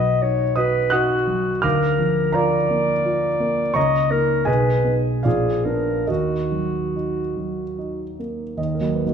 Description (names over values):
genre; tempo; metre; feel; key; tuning
classical, romantic duo for clarinet and grand piano; 68-90 BPM; 3/4; rubato; Eb minor; A4 = 440 Hz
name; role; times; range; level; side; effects
mellow clarinet; melody; 0.0-8.2 s; Gb4 to D#5; -22 LUFS; left 2 dB; none
dark concert grand piano; accompaniment; 0.0-9.1 s; Bb1 to F#6; -21 LUFS; right 2 dB; none
room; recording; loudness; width
wet recital hall reverb, RT60 1.6 s; dark, warm production, nothing above 11.0 kHz; -18 LUFS; side -7 dB against mid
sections
0.0-8.6 A section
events
none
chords
0.0 B; 1.6 Bb/D; 3.8 Eb5/Db; 4.5 Abm/Cb; 5.3 Bb7b9; 6.1 Ebm